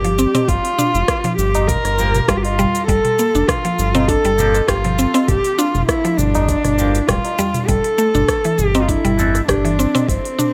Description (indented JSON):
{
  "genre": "organic downtempo",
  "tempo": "100 BPM",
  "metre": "4/4",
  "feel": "swing 53% on 16ths",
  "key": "G dorian",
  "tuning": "A4 = 440 Hz",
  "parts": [
    { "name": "dark cello", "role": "melody", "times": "0.0-10.5 s", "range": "C4 to Bb4", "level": "-21 LUFS", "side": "equal", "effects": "tape echo" },
    { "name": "mallet-like synth pluck", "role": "arpeggios", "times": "0.0-10.5 s", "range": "E3 to G4", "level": "-23 LUFS", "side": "equal", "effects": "chorus, delay" },
    { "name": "round analog bass", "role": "bass", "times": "0.0-10.2 s", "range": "D1 to G1", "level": "-22 LUFS", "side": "equal", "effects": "tube saturation" },
    { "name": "afro-pop drum kit", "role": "drums", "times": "0.0-10.5 s", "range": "cabasa, hi-hat, rim click, toms", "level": "-25 LUFS", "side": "equal", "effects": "studio reverb" },
    { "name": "tabla", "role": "percussion", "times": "0.3-10.1 s", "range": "none", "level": "-29 LUFS", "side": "equal", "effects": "none" },
    { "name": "electronic kick drum", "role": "drums", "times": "0.5-10.2 s", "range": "none", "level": "-25 LUFS", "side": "equal", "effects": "studio reverb" },
    { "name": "clean electric guitar", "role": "accompaniment", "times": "2.0-9.4 s", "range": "E3 to A4", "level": "-30 LUFS", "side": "equal", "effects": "phaser, sidechain pumping, delay" }
  ],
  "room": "light reverb, digital ambience",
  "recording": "none",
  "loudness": "-17 LUFS",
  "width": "mono",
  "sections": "0.0-10.5 A section",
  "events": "none",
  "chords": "0.0 G7(no3); 7.7 Am/G"
}